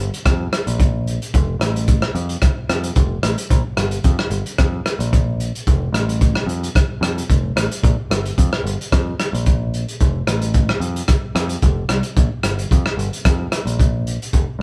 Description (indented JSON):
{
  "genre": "highlife guitar band",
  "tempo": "111 BPM",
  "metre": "4/4",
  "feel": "swing 55% on 16ths",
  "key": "unclear",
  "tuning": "A4 = 440 Hz",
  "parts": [
    { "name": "picked electric bass", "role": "bass", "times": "0.0-14.6 s", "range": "F1 to F2", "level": "-24 LUFS", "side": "equal", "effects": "none" },
    { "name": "crunchy breakbeat drum kit", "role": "drums", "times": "0.1-14.5 s", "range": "hi-hat, kick drum, rim click", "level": "-20 LUFS", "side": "equal", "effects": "none" }
  ],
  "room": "light reverb",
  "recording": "band playing live in one room",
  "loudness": "-19 LUFS",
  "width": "mono",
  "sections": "0.0-14.3 A section",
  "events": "none",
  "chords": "none"
}